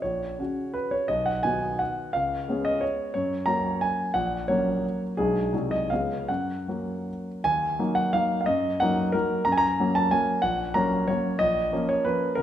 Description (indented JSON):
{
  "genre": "classical, romantic triple-time dance for piano with dotted rhythms",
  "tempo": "146-199 BPM",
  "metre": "3/4",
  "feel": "rubato",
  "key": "F# major, Eb minor from 7.5 s",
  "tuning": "A4 = 440 Hz",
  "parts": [
    { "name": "warm concert grand piano", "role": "solo", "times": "0.0-12.4 s", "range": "A#1 to A#5", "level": "-23 LUFS", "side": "equal", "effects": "none" }
  ],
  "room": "moderate recital hall reverb, RT60 1.6 s",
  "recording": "minimal, uncompressed stereo recording",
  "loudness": "-23 LUFS",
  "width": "side -10 dB against mid",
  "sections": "0.0-7.5 A section; 7.5-12.4 B section",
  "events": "none",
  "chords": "0.0 F#/A#; 1.1 B; 2.1 C#7; 3.1 F#; 4.1 F#/A#; 5.2 G#m7b5/B; 5.5 G#7/B#; 5.9 C#7; 6.3 F#; 7.5 Ebm; 8.5 Ebm/Gb; 9.5 Gb; 10.4 Gb/Bb; 11.4 Bbm"
}